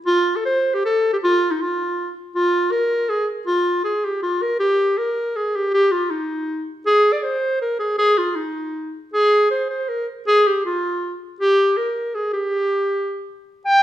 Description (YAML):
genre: alpine folk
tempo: 159 BPM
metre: 3/4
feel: straight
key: unclear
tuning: A4 = 444 Hz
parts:
  - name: clear clarinet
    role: solo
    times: 0.1-13.8 s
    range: Eb4 to G5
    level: -17 LUFS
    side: equal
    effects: none
room: moderate recital hall reverb, RT60 1.3 s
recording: minimal, uncompressed stereo recording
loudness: -18 LUFS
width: side -12 dB against mid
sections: 0.0-13.7 A section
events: none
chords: none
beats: | 0.04 0.43 0.81 | 1.19 1.56 1.94 | 2.32 2.69 3.07 | 3.45 3.82 4.21 | 4.59 4.97 5.35 | 5.72 6.10 6.47 | 6.85 7.22 7.60 | 7.98 8.36 8.74 | 9.12 9.50 9.88 | 10.26 10.63 11.01 | 11.38 11.76 12.13 | 12.51 12.89 13.27 | 13.65